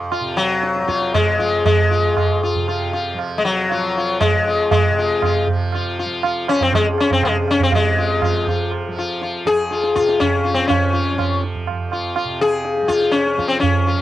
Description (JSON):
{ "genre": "indian classical, Hindustani", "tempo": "120 BPM", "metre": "3/4", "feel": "straight", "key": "F raga todi", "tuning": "A4 = 440 Hz", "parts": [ { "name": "tanpura", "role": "drone", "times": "0.0-14.0 s", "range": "F2 to F3", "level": "-27 LUFS", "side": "right 1 dB", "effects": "cassette tape" }, { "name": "sitar", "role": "melody", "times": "0.1-14.0 s", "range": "Gb3 to Ab4", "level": "-17 LUFS", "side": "left 3 dB", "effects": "cassette tape" }, { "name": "tabla", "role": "percussion", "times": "0.1-13.8 s", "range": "none", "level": "-21 LUFS", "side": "right 4 dB", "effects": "none" } ], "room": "light reverb", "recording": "home recording on cassette", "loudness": "-16 LUFS", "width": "side -13 dB against mid", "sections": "0.0-7.7 A section; 7.7-14.0 B section", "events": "speeding up 0.0-14.0", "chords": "none", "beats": "| 0.12 0.63 1.15 | 1.66 2.17 2.68 | 3.19 3.70 4.21 | 4.71 5.22 5.72 | 6.23 6.73 7.23 | 7.73 8.22 8.72 | 9.22 9.71 10.21 | 10.70 11.19 11.68 | 12.16 12.65 13.14 | 13.62" }